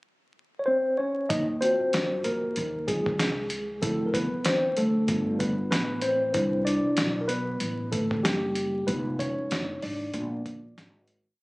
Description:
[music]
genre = hip hop, jazz-hop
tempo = 95 BPM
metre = 4/4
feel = swing 57% on 16ths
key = unclear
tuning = A4 = 440 Hz
[part]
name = mellow tine electric piano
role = accompaniment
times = 0.6-11.0 s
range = F3 to Eb5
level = -26 LUFS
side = equal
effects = fast stereo tremolo
[part]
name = upright bass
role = bass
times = 1.3-11.4 s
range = F1 to Gb2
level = -32 LUFS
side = equal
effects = none
[part]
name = dusty soul sampler-style drum kit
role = drums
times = 1.3-11.2 s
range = hi-hat, kick drum, snare drum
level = -30 LUFS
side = equal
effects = overdrive
[sound]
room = little or no reverb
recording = recorded on a phone in the room, club reverb, vinyl crackle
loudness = -24 LUFS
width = side -22 dB against mid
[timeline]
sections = 0.0-1.3 pickup bar; 1.3-11.4 head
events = tine electric piano solo 1.3-11.4; fade-out 8.9-11.4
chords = 0.0 N.C.; 1.3 Ebm69; 3.8 Dm7; 5.1 G9; 6.4 Cmaj9; 8.9 Fm7b5; 10.1 Bb7b9

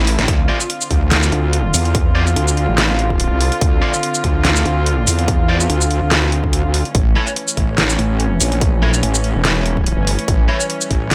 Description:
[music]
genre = heavy wobble dubstep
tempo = 144 BPM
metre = 4/4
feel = swing 55% on 16ths, half-time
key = D minor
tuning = A4 = 440 Hz
[part]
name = warm studio string section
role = sustained chords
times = 0.0-11.1 s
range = D3 to F4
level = -25 LUFS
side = equal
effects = sidechain pumping
[part]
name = wobble bass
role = bass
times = 0.0-11.1 s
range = E1 to E2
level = -20 LUFS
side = equal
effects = chorus, overdrive
[part]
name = dubstep drum kit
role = drums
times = 0.1-11.1 s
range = handclaps, hi-hat, shaker, snare drum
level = -21 LUFS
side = equal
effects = none
[part]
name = metallic wobble bass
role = bass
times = 0.2-9.3 s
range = A1 to D2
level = -19 LUFS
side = equal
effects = chorus, overdrive
[part]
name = electronic kick drum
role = drums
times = 0.3-11.0 s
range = none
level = -20 LUFS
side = equal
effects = none
[part]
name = thick fuzz guitar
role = stabs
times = 0.5-10.6 s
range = E4 to D5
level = -27 LUFS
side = equal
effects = distortion, dub echo
[sound]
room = little or no reverb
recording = none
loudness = -16 LUFS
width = mono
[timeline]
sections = 0.0-11.1 A section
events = drum fill 0.0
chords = 0.3 Dm7; 6.9 A

